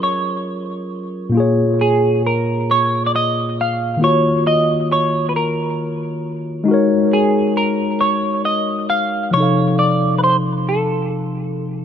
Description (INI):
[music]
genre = R&B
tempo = 45 BPM (dotted quarters)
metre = 6/8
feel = straight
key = unclear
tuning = A4 = 440 Hz
[part]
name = semi-hollow electric guitar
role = melody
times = 0.0-11.6 s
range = Ab4 to F5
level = -18 LUFS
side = right 2 dB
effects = analog chorus, tape echo
[part]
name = mellow tine electric piano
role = accompaniment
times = 0.0-11.8 s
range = Bb2 to F5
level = -18 LUFS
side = left 2 dB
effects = tape echo
[sound]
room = moderate plate reverb, RT60 2.5 s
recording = echo-heavy mix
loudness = -15 LUFS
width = side -8 dB against mid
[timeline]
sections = 0.0-1.3 A section; 1.3-11.8 B section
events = none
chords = 0.0 Gbmaj9; 1.3 Bbm7; 4.0 Ebm9; 6.7 Ab9sus4; 9.3 F7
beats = 0.01 | 1.34 2.67 | 4.01 5.34 | 6.67 8.01 | 9.34 10.67